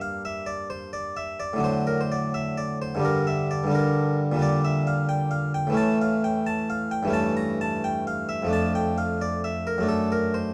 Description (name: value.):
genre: classical, baroque-style suite movement for harpsichord.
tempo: 87 BPM (dotted quarters).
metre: 12/8.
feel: rubato.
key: D minor from 4.4 s.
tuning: A4 = 440 Hz.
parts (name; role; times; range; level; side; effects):
harpsichord; solo; 0.0-10.5 s; F2 to Bb5; -26 LUFS; equal; none.
room: light reverb.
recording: dark, warm production.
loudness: -25 LUFS.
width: mono.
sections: 0.0-10.5 A section.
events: none.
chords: 0.0 Gm; 1.6 D/A; 3.0 Gm; 4.4 Gm/Bb; 5.8 A; 7.1 A7/G; 8.5 Dm/F; 9.9 D7/F#.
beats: 0.23 0.93 | 1.63 2.33 3.03 3.73 | 4.41 5.09 5.77 6.45 | 7.13 7.82 8.50 9.18 | 9.88.